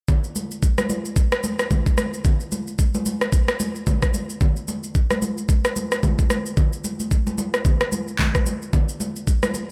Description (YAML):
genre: amapiano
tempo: 111 BPM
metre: 4/4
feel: swing 58% on 16ths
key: none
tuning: none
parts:
  - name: smooth R&B drum kit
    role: drums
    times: 0.1-9.7 s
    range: handclaps, kick drum, rim click, shaker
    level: -22 LUFS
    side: equal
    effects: none
  - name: congas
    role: percussion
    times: 0.1-9.7 s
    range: none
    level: -29 LUFS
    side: equal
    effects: none
room: light reverb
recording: none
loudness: -22 LUFS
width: mono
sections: 0.1-9.7 A section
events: none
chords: none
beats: | 0.09 0.62 1.17 1.71 | 2.25 2.79 3.33 3.87 | 4.41 4.95 5.49 6.03 | 6.57 7.11 7.65 8.19 | 8.73 9.27